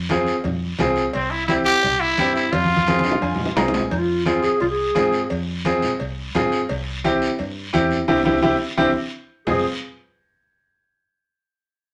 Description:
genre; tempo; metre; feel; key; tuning
latin, cumbia; 173 BPM; 4/4; straight; F minor; A4 = 440 Hz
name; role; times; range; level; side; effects
fingered electric bass; bass; 0.0-9.6 s; F1 to Ab2; -31 LUFS; equal; none
bright upright piano; accompaniment; 0.1-9.6 s; C4 to Bb5; -23 LUFS; equal; none
congas; percussion; 0.1-9.6 s; none; -29 LUFS; equal; none
cowbell and timbales; percussion; 0.1-9.6 s; none; -33 LUFS; equal; none
guiro; percussion; 0.1-9.6 s; none; -35 LUFS; equal; none
growling trumpet; melody; 1.1-3.6 s; C4 to G4; -22 LUFS; equal; none
dark clarinet; second line; 3.9-5.4, 9.5-9.6 s; Eb4 to Ab4; -24 LUFS; equal; none
room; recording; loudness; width
wet studio reverb, RT60 0.6 s; none; -21 LUFS; mono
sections
0.0-3.9 A section; 3.9-9.5 B section; 9.5-10.9 C section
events
drum fill 2.5-3.9, 8.6-9.5; upright piano fill 2.9-3.9; band accent 8.1-9.5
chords
0.0 Fm; 1.1 C; 2.5 Fm; 6.7 C; 9.5 Fm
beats
0.10 0.45 0.79 | 1.14 1.49 1.83 2.18 | 2.53 2.87 3.22 3.57 | 3.92 4.26 4.61 4.96 | 5.30 5.65 6.00 6.35 | 6.69 7.04 7.39 7.74 | 8.08 8.43 8.78 9.13 | 9.47

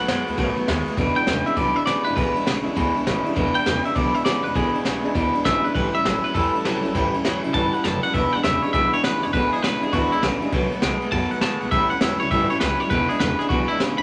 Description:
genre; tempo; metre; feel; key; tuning
rockabilly; 201 BPM; 4/4; swing 65% on 8ths; E mixolydian; A4 = 439 Hz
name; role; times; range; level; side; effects
twangy electric guitar; melody; 0.0-14.0 s; E4 to B5; -26 LUFS; equal; none
picked steel-string acoustic guitar; accompaniment; 0.0-14.0 s; E2 to F#4; -27 LUFS; equal; none
electric guitar through a small old amp; riff; 0.0-14.0 s; E2 to G#3; -29 LUFS; equal; none
upright bass; bass; 0.1-14.0 s; E1 to F#2; -32 LUFS; equal; none
jazz brush drum kit; drums; 0.1-14.0 s; kick drum, ride cymbal, snare drum; -28 LUFS; equal; none
room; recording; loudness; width
moderate large studio reverb, RT60 1.0 s; none; -21 LUFS; mono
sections
1.0-14.0 A section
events
none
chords
0.0 B7; 1.0 E7; 5.8 A7; 8.1 E7; 10.5 B7; 11.7 A7; 12.9 E7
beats
0.09 0.38 0.68 | 0.98 1.27 1.57 1.87 | 2.17 2.47 2.77 3.06 | 3.36 3.66 3.96 4.26 | 4.56 4.86 5.15 5.45 | 5.75 6.05 6.35 6.65 | 6.95 7.25 7.54 7.84 | 8.14 8.44 8.74 9.04 | 9.34 9.63 9.93 10.23 | 10.53 10.83 11.12 11.42 | 11.72 12.02 12.32 12.61 | 12.91 13.21 13.51 13.80

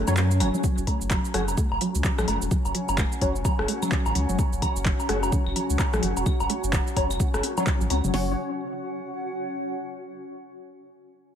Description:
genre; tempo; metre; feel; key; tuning
minimal techno; 128 BPM; 4/4; swing 60% on 16ths; F# minor; A4 = 442 Hz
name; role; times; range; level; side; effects
resonant blip pluck; riff; 0.0-8.4 s; C#3 to C#4; -33 LUFS; right 2 dB; chorus, sidechain pumping, ping-pong delay
saturated sub bass; bass; 0.0-8.4 s; E1 to F#2; -27 LUFS; equal; tube saturation, sidechain pumping
granular cloud pad; texture; 0.0-10.0 s; C#4 to A5; -32 LUFS; equal; built-in reverb, sidechain pumping
pulsing gated texture; texture; 0.1-0.7 s; none; barely audible; none; none
percussive organ stab; stabs; 0.1-8.3 s; C#4 to C#5; -32 LUFS; left 3 dB; ensemble chorus, cassette tape, digital delay
minimal click drum kit; drums; 0.1-8.1 s; handclaps, hi-hat, shaker; -31 LUFS; equal; none
electronic congas, woodblock, claves and rim click; percussion; 0.1-8.1 s; none; -29 LUFS; equal; digital delay
minimal click drum kit; drums; 0.6-8.3 s; hi-hat, kick drum, snare drum; -25 LUFS; equal; none
room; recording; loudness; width
light reverb; none; -22 LUFS; side -9 dB against mid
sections
0.6-8.1 A section; 8.1-10.0 B section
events
break 0.0-0.6; filter sweep on synth stab 0.6-8.1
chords
0.0 F#5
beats
0.17 | 0.64 1.11 1.57 2.04 | 2.51 2.98 3.45 3.92 | 4.39 4.86 5.33 5.79 | 6.26 6.73 7.20 7.67 | 8.14 8.61 9.07 9.54

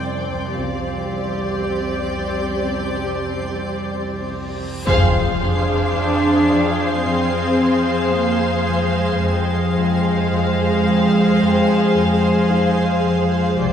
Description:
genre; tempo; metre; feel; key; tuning
cinematic, suspense film score; 55 BPM; 4/4; straight; F dorian; A4 = 440 Hz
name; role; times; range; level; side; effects
rich studio violin section; melody; 0.0-13.7 s; D5 to F5; -26 LUFS; left 3 dB; none
rich studio viola section; accompaniment; 0.0-13.7 s; C4 to G5; -26 LUFS; equal; none
shimmering ambient pad; sustained chords; 0.0-13.7 s; G4 to C6; -26 LUFS; left 1 dB; chorus, built-in reverb
warm studio cello section; bass; 0.0-13.6 s; C2 to D4; -22 LUFS; right 1 dB; none
metallic inharmonic drone; drone; 0.0-13.7 s; F2; -28 LUFS; right 1 dB; chorus, built-in reverb
celesta; texture; 0.0-13.7 s; Eb4 to F5; -32 LUFS; equal; none
rich studio double bass section; bass; 0.5-13.7 s; C2 to F2; -25 LUFS; right 4 dB; none
reverse cymbal and impact; sound effects; 4.8-9.2 s; none; -25 LUFS; equal; none
rich studio violin section; second line; 4.9-13.7 s; C5; -25 LUFS; left 2 dB; none
concert harp; riff; 4.9-13.7 s; F2 to F3; -22 LUFS; left 4 dB; none
room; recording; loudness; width
wet scoring stage reverb, RT60 1.9 s; heard from further back in the room; -16 LUFS; side -8 dB against mid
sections
0.0-4.9 A section; 4.9-13.7 A section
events
reverse cymbal 4.8; band accent 4.9-6.0; impact 4.9-9.2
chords
0.0 Csus2; 4.9 Fm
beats
| 0.50 1.59 2.68 3.77 | 4.86 5.95 7.04 8.14 | 9.23 10.32 11.41 12.50 | 13.59

